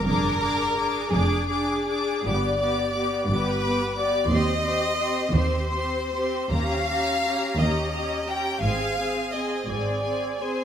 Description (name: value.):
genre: classical, slow romantic movement for string orchestra.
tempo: 48-61 BPM (dotted quarters).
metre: 12/8.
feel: rubato.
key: C minor.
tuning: A4 = 438 Hz.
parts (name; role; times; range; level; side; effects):
clear studio violin section; melody; 0.0-10.6 s; Ab5 to D6; -32 LUFS; left 3 dB; none.
rich studio violin section; second line; 0.0-10.6 s; Ab4 to G5; -26 LUFS; left 2 dB; none.
rich studio viola section; accompaniment; 0.0-10.6 s; B3 to Ab4; -28 LUFS; equal; none.
rich studio cello section; bass; 0.1-10.6 s; Eb2 to Ab2; -32 LUFS; right 1 dB; none.
warm studio double bass section; bass; 0.1-10.6 s; F1 to Eb2; -28 LUFS; right 2 dB; none.
room: moderate scoring stage reverb, RT60 1.7 s.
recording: close, detailed microphones.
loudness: -22 LUFS.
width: side -9 dB against mid.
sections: 0.0-10.6 A section.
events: none.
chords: 0.1 Ddim/F; 2.3 G; 4.3 Cm/Eb; 6.5 Eb7; 8.6 Ab.